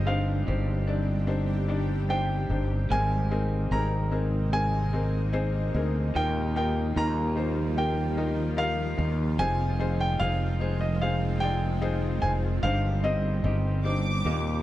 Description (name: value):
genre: pop ballad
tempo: 74 BPM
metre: 4/4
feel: straight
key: unclear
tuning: A4 = 440 Hz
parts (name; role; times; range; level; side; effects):
- clear concert grand piano; melody; 0.0-13.8 s; Eb5 to Bb5; -31 LUFS; right 1 dB; none
- felt-muted upright piano; accompaniment; 0.0-14.6 s; G2 to Eb5; -32 LUFS; left 4 dB; none
- shimmering ambient pad; sustained chords; 0.0-14.6 s; C3 to G4; -37 LUFS; right 1 dB; chorus, built-in reverb
- clean electric guitar; arpeggios; 0.0-14.6 s; F2 to Bb4; -37 LUFS; right 6 dB; harmonic tremolo
- fretless electric bass; bass; 0.0-14.6 s; F1 to Eb2; -27 LUFS; equal; none
- warm studio violin section; second line; 13.8-14.6 s; D6; -32 LUFS; right 2 dB; none
room: light reverb, small room ambience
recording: dark, warm production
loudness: -24 LUFS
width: side -14 dB against mid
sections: 0.0-14.6 A section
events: none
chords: 0.0 Cmadd9/G; 2.9 Abadd9; 6.2 Ebadd9; 9.4 Fm7; 12.6 Cmadd9/G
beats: 0.47 1.28 2.10 | 2.91 3.72 4.53 5.34 | 6.15 6.96 7.77 8.58 | 9.39 10.20 11.02 11.82 | 12.64 13.45 14.26